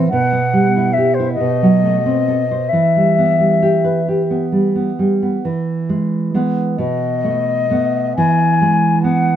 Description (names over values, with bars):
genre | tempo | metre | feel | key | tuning
romantic duo for flute and classical guitar | 45 BPM (dotted quarters) | 6/8 | uneven beats, rubato | E minor, E major from 5.4 s | A4 = 442 Hz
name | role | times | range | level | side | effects
nylon-string guitar | accompaniment | 0.0-9.4 s | B2 to C5 | -15 LUFS | right 2 dB | none
mellow concert flute | melody | 0.1-9.4 s | C5 to G#5 | -17 LUFS | left 4 dB | tape echo
room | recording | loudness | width
light reverb | close, detailed microphones | -13 LUFS | side -10 dB against mid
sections
0.0-5.4 A section; 5.4-9.4 B section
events
none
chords
0.1 Em/B; 1.4 B7b9; 2.7 Em; 5.4 E; 6.8 B7; 8.2 E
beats
| 0.10 1.38 | 2.71 4.07 | 5.43 6.79 | 8.18